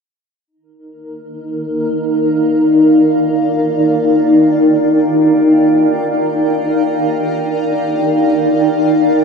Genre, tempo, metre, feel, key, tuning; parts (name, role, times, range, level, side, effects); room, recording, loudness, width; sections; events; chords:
ambient; free time; Eb major; A4 = 441 Hz
granular cloud pad; solo; 1.5-9.2 s; Eb4 to G5; -11 LUFS; equal; built-in reverb, tape echo
wet cathedral reverb, RT60 5.8 s; in a vast, echoing space; -11 LUFS; side -5 dB against mid
0.5-9.2 A section
0.5 Ebmaj7